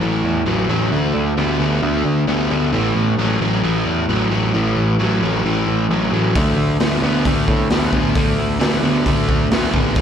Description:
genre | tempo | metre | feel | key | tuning
blues rock power trio and southern rock | 133 BPM | 4/4 | straight | unclear | A4 = 440 Hz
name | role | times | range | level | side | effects
crunchy overdriven guitar | riff | 0.0-10.0 s | A2 to B3 | -18 LUFS | equal | slapback echo
overdriven picked electric bass | bass | 0.0-10.0 s | G#1 to A2 | -20 LUFS | equal | none
raw garage drum kit | drums | 6.4-10.0 s | hi-hat, kick drum, snare drum | -20 LUFS | equal | none
room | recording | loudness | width
little or no reverb | live gig heard through the venue's PA, recital hall reverb | -15 LUFS | side -8 dB against mid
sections
0.0-10.0 A section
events
none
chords
0.0 A5; 0.9 D5; 2.7 A5; 6.4 D5

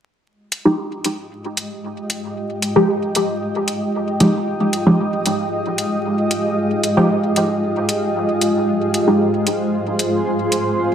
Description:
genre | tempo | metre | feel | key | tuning
dub techno | 114 BPM | 4/4 | straight | F minor | A4 = 440 Hz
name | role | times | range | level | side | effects
granular cloud pad | sustained chords | 1.4-10.9 s | Ab3 to Eb5 | -19 LUFS | equal | built-in reverb
electronic hi-hat | drums | 0.5-10.6 s | none | -22 LUFS | left 1 dB | overdrive, studio reverb
filtered dub chord stab | stabs | 0.7-9.2 s | F3 to G4 | -18 LUFS | equal | phaser, dub echo
room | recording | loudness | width
moderate plate reverb, RT60 1.4 s, digital ambience | echo-heavy mix, vinyl crackle | -16 LUFS | side -9 dB against mid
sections
0.3-10.9 A section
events
filter sweep on synth stab 0.3-10.9; filter sweep on ambient pad 0.3-10.9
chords
0.3 Fm9

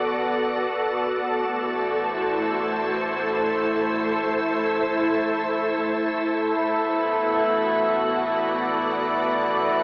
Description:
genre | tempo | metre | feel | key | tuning
ambient | free time | none | none | A dorian | A4 = 440 Hz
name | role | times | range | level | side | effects
soft additive organ-like pad | sustained chords | 0.0-9.8 s | A3 to D5 | -22 LUFS | equal | ensemble chorus, built-in reverb
warm sub bass | bass | 0.0-9.8 s | A1 | -47 LUFS | equal | none
hand-pumped harmonium | drone | 6.6-9.8 s | A3 to E4 | -22 LUFS | equal | none
room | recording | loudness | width
wet huge ambient reverb, RT60 7.1 s | AM radio sound | -21 LUFS | side -37 dB against mid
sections
0.0-9.8 A section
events
none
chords
0.0 Bm7/A; 1.0 Am; 6.5 Bm7/A

